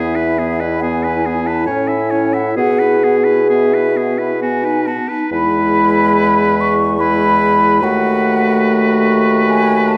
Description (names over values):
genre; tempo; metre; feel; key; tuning
classical, slow romantic movement for wind quintet; 64-75 BPM; 3/4; rubato; E major; A4 = 440 Hz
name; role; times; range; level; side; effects
mellow hollow concert flute; melody; 0.0-10.0 s; D#5 to C#6; -21 LUFS; equal; none
bright oboe; second line; 0.0-10.0 s; F#4 to E5; -24 LUFS; equal; none
dark French horn; accompaniment; 0.0-10.0 s; G#3 to G#4; -19 LUFS; equal; none
warm clarinet; accompaniment; 0.0-10.0 s; B3 to F#4; -23 LUFS; equal; none
mellow bassoon; bass; 0.0-10.0 s; D#2 to B2; -22 LUFS; equal; none
room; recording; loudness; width
wet recital hall reverb, RT60 1.6 s; dark, warm production; -15 LUFS; mono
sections
0.0-5.3 A section; 5.3-10.0 B section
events
none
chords
0.0 E; 1.7 Amaj7; 2.6 E/B; 4.4 B; 5.3 E; 7.8 B7/D#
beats
0.82 1.67 | 2.56 3.49 4.41 | 5.31 6.17 6.99 | 7.81 8.64 9.45